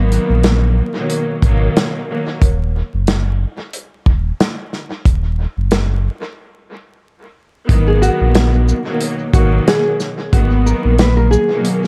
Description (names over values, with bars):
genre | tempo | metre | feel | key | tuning
hip hop, boom-bap hip-hop | 91 BPM | 4/4 | swing 56% on 16ths | unclear | A4 = 442 Hz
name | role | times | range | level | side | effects
warm studio string section | accompaniment | 0.0-2.4, 7.7-11.9 s | Cb3 to Cb4 | -21 LUFS | equal | cassette tape, high-pass filter, low-pass filter
sub bass with octave | bass | 0.0-11.4 s | Eb1 to Bb1 | -17 LUFS | equal | none
warm soul drum kit | drums | 0.1-11.9 s | hi-hat, kick drum, shaker, snare drum | -19 LUFS | equal | dub echo
nylon-string guitar | melody | 7.9-11.9 s | Gb4 to Cb5 | -21 LUFS | equal | high-pass filter, low-pass filter, dub echo
room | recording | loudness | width
light reverb, studio reverb | echo-heavy mix, vinyl crackle | -15 LUFS | mono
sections
0.0-7.7 A section; 7.7-11.9 B section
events
break 2.4-7.7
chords
0.0 Abm7; 2.4 Ebm; 7.7 Abm7